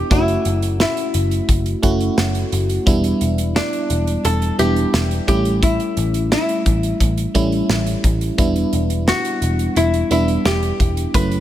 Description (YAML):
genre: 1980s-style pop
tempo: 87 BPM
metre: 4/4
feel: straight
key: E dorian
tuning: A4 = 442 Hz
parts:
  - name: archtop guitar, miked and amplified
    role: melody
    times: 0.0-11.4 s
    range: D4 to B4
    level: -22 LUFS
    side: left 2 dB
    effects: tape echo
  - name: FM electric piano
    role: accompaniment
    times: 0.0-11.4 s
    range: F#3 to G4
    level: -21 LUFS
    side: right 1 dB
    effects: chorus
  - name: vintage muted picked electric bass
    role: bass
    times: 0.1-11.4 s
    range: E1 to A1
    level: -20 LUFS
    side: equal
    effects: none
  - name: modern studio drum kit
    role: drums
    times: 0.1-11.4 s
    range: hi-hat, kick drum, snare drum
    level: -20 LUFS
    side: equal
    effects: none
room: small room ambience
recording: none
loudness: -16 LUFS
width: side -12 dB against mid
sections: 0.0-11.4 A section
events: none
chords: 0.1 F#m7; 2.9 Em7; 5.3 A7; 8.4 Em7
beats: | 0.11 0.80 1.49 2.18 | 2.87 3.56 4.25 4.94 | 5.63 6.32 7.01 7.70 | 8.38 9.07 9.77 10.45 | 11.14